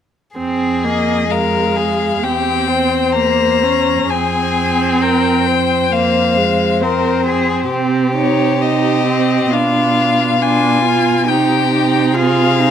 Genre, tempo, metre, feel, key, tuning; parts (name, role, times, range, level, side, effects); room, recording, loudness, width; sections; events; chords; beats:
classical, slow romantic movement for string quartet; 66 BPM; 4/4; uneven beats, rubato; F minor; A4 = 438 Hz
rich violin; second line; 0.4-12.7 s; F4 to C5; -19 LUFS; left 4 dB
warm viola; accompaniment; 0.4-12.7 s; Ab3 to F4; -18 LUFS; right 3 dB
warm cello; bass; 0.4-12.7 s; E2 to C3; -19 LUFS; right 4 dB
warm violin; melody; 0.8-12.7 s; C5 to Bb5; -18 LUFS; left 7 dB
light reverb; close, detailed microphones; -12 LUFS; side -8 dB against mid
0.4-12.7 A section
0.4 Fm; 2.2 C7/E; 4.1 Fm; 7.7 Cm; 9.5 Bdim7; 11.3 Cm
| 0.38 1.32 2.24 3.16 | 4.10 5.02 5.92 6.83 | 7.71 8.62 9.53 10.41 | 11.29 12.15